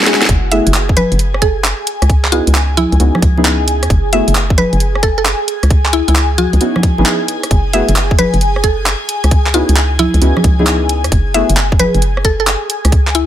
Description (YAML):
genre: UK garage, two-step garage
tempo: 133 BPM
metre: 4/4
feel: swing 67% on 16ths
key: F# minor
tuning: A4 = 438 Hz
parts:
  - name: airy breathy pad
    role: sustained chords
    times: 0.0-13.3 s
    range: F#4 to G#5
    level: -22 LUFS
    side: equal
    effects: chorus, phaser, sidechain pumping
  - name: garage drum kit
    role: drums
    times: 0.0-13.3 s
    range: congas, handclaps, hi-hat, rim click, snare drum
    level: -16 LUFS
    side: right 1 dB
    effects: overdrive
  - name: deep mellow chord stab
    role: stabs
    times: 0.1-11.5 s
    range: G#3 to G#4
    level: -18 LUFS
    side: equal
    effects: chorus, dub echo
  - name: hollow knocking FM bass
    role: bass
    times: 0.3-13.2 s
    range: F#1 to E2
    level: -14 LUFS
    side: equal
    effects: sidechain pumping
  - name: electronic kick drum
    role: drums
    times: 0.3-13.0 s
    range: none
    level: -12 LUFS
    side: equal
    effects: overdrive
  - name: mallet-like synth pluck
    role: melody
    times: 0.5-13.2 s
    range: E4 to E5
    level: -17 LUFS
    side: left 1 dB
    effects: chorus
room: little or no reverb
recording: none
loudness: -10 LUFS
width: side -11 dB against mid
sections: 0.3-13.3 A section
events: drum fill 0.0; drop 0.3-13.3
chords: 0.3 F#m11; 2.1 C#m11; 3.9 F#m11; 5.7 C#m11; 7.5 F#m11; 9.3 C#m11; 11.1 F#m11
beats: | 0.29 0.74 1.19 1.65 | 2.10 2.55 3.00 3.45 | 3.90 4.35 4.80 5.25 | 5.71 6.16 6.61 7.06 | 7.51 7.96 8.41 8.86 | 9.31 9.77 10.22 10.67 | 11.12 11.57 12.02 12.47 | 12.92